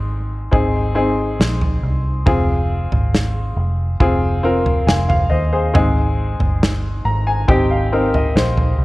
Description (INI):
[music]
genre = pop ballad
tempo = 69 BPM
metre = 4/4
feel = straight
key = unclear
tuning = A4 = 440 Hz
[part]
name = clear upright piano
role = accompaniment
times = 0.0-8.8 s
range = Ab2 to Bb5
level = -19 LUFS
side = left 1 dB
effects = none
[part]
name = vintage muted fingered electric bass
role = bass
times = 0.0-8.8 s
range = F1 to Eb2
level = -20 LUFS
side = equal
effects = none
[part]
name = natural country drum kit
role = drums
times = 0.5-8.8 s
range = kick drum, snare drum, toms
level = -19 LUFS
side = equal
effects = none
[sound]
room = light reverb, studio reverb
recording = worn, warbling old tape, cassette tape, warbly pitch drift, faint mains hum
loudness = -15 LUFS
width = side -19 dB against mid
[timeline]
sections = 0.0-8.8 A section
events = upright piano fill 6.6-8.8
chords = 0.0 Ab; 2.3 Fm; 5.7 Ab